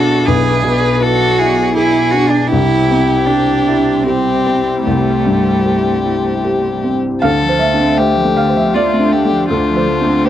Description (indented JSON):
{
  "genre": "neoclassical piano and strings",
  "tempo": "78 BPM",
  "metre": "3/4",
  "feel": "uneven beats, rubato",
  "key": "D minor",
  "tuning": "A4 = 438 Hz",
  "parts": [
    { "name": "warm violin", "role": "melody", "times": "0.0-10.3 s", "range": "F4 to B4", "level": "-17 LUFS", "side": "left 5 dB", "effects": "none" },
    { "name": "rich cello", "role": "second line", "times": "0.0-10.3 s", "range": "D3 to G#4", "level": "-17 LUFS", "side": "right 4 dB", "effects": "none" },
    { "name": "felt-muted upright piano", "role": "accompaniment", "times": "0.0-10.3 s", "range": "B1 to F5", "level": "-15 LUFS", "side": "equal", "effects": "none" },
    { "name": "sweeping resonant pad", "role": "sustained chords", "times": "0.0-10.3 s", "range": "G3 to D5", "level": "-23 LUFS", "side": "left 1 dB", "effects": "chorus" }
  ],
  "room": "little or no reverb",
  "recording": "dry, close 1970s-style studio recording",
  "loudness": "-11 LUFS",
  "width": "side -11 dB against mid",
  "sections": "0.0-7.2 A section; 7.2-10.3 B section",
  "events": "none",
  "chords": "0.0 E7/B; 2.5 Am7/C; 7.2 Dm7"
}